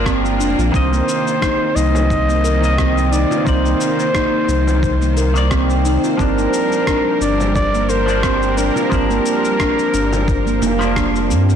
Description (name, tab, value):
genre	organic downtempo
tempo	88 BPM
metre	4/4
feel	swing 55% on 16ths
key	C minor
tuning	A4 = 440 Hz
part	trumpet with bucket mute	melody	0.0-11.0 s	Bb4 to Eb5	-21 LUFS	equal	digital delay, shimmer reverb
part	semi-hollow electric guitar	accompaniment	0.0-11.6 s	Eb3 to Eb5	-25 LUFS	left 2 dB	vibrato effect, sidechain pumping, digital delay, shimmer reverb
part	rich symphonic string section	sustained chords	0.0-11.6 s	C3 to C5	-25 LUFS	right 1 dB	sidechain pumping, shimmer reverb
part	warm sub bass	bass	0.0-11.6 s	F1 to G2	-18 LUFS	equal	tube saturation, sidechain pumping
part	handpan	arpeggios	0.1-11.6 s	Bb3 to Bb4	-19 LUFS	right 1 dB	digital delay, shimmer reverb
part	electronic kick drum	drums	0.1-11.1 s	none	-23 LUFS	equal	none
part	electronic rim click and shaker	drums	0.1-11.6 s	none	-27 LUFS	left 1 dB	soft clipping on snare
part	frame drum	percussion	1.9-10.8 s	none	-29 LUFS	left 2 dB	none
room	light reverb, studio reverb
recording	blown-out, overdriven recording, overdrive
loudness	-14 LUFS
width	side -8 dB against mid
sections	0.0-11.6 A section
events	band accent 11.0-11.3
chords	0.0 Gm7; 0.7 Cm7; 6.2 Gm7